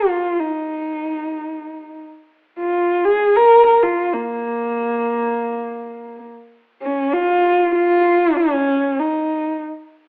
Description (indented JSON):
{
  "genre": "mongolian traditional",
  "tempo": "free time",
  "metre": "none",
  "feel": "none",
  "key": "Bb yu mode",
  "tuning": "A4 = 440 Hz",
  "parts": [
    { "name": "dark horsehead fiddle", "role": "solo", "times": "0.0-9.6 s", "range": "Bb3 to Bb4", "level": "-18 LUFS", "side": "equal", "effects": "cassette tape" }
  ],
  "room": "wet spring reverb, RT60 1.1 s, small room ambience",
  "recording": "home recording on cassette, telephone sound",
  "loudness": "-18 LUFS",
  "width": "mono",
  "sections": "0.0-6.5 A section; 6.5-10.1 B section",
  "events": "none",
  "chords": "none"
}